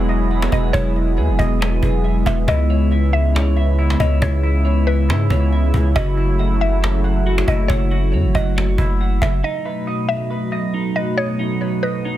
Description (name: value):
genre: hip hop, atmospheric cloud-rap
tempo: 138 BPM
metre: 4/4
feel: half-time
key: unclear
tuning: A4 = 440 Hz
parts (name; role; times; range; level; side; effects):
- dark analog pad; sustained chords; 0.0-12.2 s; B2 to F#4; -22 LUFS; right 2 dB; chorus
- clean electric guitar; arpeggios; 0.0-12.2 s; B3 to F#5; -27 LUFS; left 1 dB; analog chorus, low-pass filter, tape echo
- long sustained 808-style bass; bass; 0.0-9.4 s; E1 to G#2; -17 LUFS; equal; none
- cajon; drums; 0.1-9.3 s; none; -23 LUFS; equal; none
- mallet-like synth pluck; melody; 0.5-12.2 s; B4 to E5; -25 LUFS; left 1 dB; chorus, phaser, low-pass filter, tape echo
room: little or no reverb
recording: dense, heavily limited modern master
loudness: -16 LUFS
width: side -13 dB against mid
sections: 0.0-9.4 A section; 9.4-12.2 B section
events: none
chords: 0.0 Emaj7; 2.5 C#m7; 6.0 F#m7; 9.4 B7